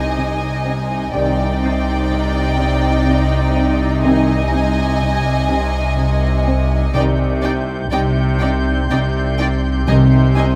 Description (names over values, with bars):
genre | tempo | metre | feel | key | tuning
cinematic | 62 BPM | 3/4 | straight | C minor | A4 = 440 Hz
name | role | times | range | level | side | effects
warm symphonic violin section | melody | 0.0-10.4 s | G5 to Ab5 | -28 LUFS | equal | none
warm symphonic violin section | second line | 0.0-10.5 s | D5 to Eb5 | -30 LUFS | equal | none
dark symphonic viola section | accompaniment | 0.0-10.4 s | Eb4 | -28 LUFS | equal | none
soft additive organ-like pad | sustained chords | 0.0-10.6 s | Eb4 to Ab5 | -31 LUFS | equal | none
rich symphonic cello section | bass | 0.0-10.6 s | C3 | -22 LUFS | equal | none
rich symphonic double bass section | bass | 0.0-10.6 s | C2 | -24 LUFS | equal | none
saturated sub bass | drone | 0.0-10.6 s | C2 | -24 LUFS | equal | none
concert harp | texture | 0.0-10.6 s | Eb4 to G6 | -33 LUFS | equal | none
warm studio violin section | texture | 0.0-0.6, 7.0-10.6 s | C6 to G6 | -32 LUFS | equal | none
rich symphonic cello section | riff | 0.2-10.6 s | C3 to C4 | -27 LUFS | equal | none
dark French horn section | sustained chords | 1.2-10.3 s | Eb3 to D5 | -27 LUFS | equal | none
timpani | percussion | 9.9-10.6 s | C3 | -21 LUFS | equal | none
room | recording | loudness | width
moderate concert hall reverb, RT60 2.0 s | none | -17 LUFS | mono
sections
0.0-10.6 A section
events
none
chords
0.0 Ab/C; 1.1 Cmadd9; 4.0 Ab/C; 6.9 Cmadd9; 9.9 Ab/C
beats
0.18 | 1.15 2.11 3.08 | 4.05 5.02 5.98 | 6.95 7.92 8.90 | 9.88